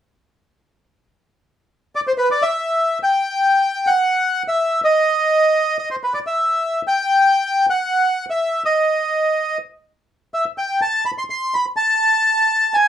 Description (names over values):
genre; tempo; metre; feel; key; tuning
tango; 125 BPM; 4/4; rubato; E minor; A4 = 440 Hz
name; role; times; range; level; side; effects
bandoneon; solo; 2.0-12.9 s; B4 to C6; -16 LUFS; equal; none
room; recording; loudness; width
wet small room reverb, RT60 0.5 s; heard from further back in the room; -16 LUFS; side -10 dB against mid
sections
0.3-2.2 A section; 2.2-12.9 B section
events
none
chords
none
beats
| 0.26 0.74 1.22 1.70 | 2.18 2.66 3.14 3.62 | 4.11 4.58 5.06 5.54 | 6.01 6.49 6.97 7.45 | 7.92 8.40 8.88 9.37 | 9.85 10.33 10.81 11.30 | 11.78 12.26 12.73